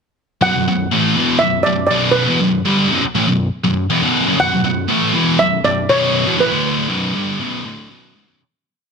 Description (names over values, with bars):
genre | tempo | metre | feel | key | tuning
rock | 120 BPM | 4/4 | straight | B minor | A4 = 440 Hz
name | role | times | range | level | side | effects
steel pan | melody | 0.4-7.4 s | B4 to F#5 | -17 LUFS | right 1 dB | digital delay
scooped high-gain guitar | riff | 0.4-8.4 s | B1 to A3 | -15 LUFS | equal | distortion
room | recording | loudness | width
moderate large studio reverb, RT60 1.1 s, small room ambience | dense, heavily limited modern master | -14 LUFS | side -5 dB against mid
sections
0.4-8.4 riff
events
fade-out 6.4-8.4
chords
0.4 Bm